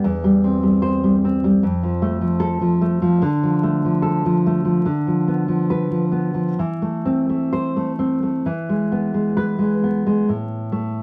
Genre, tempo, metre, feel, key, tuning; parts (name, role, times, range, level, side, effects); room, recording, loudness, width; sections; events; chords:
romantic piece for solo classical guitar; 63-77 BPM; 4/4; rubato; A4 = 441 Hz
nylon-string guitar; solo; 0.0-11.0 s; E2 to C5; -20 LUFS; equal
moderate studio reverb, RT60 0.7 s; vinyl crackle; -20 LUFS; mono
0.0-10.3 A section
0.0 C/E; 1.6 F; 3.2 Dm; 4.9 Bdim/D; 6.6 Am/E; 8.5 E; 10.3 N.C.